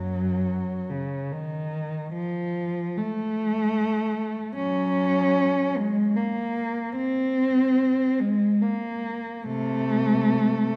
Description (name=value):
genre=classical, free, expressive piece for unaccompanied cello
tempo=free time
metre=none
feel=none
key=unclear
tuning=A4 = 440 Hz
part: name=dark cello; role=solo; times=0.0-10.8 s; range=Gb2 to Db4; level=-25 LUFS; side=equal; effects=none
room=wet concert hall reverb, RT60 2.0 s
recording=dark, warm production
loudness=-25 LUFS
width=mono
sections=0.0-10.8 A section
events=none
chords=none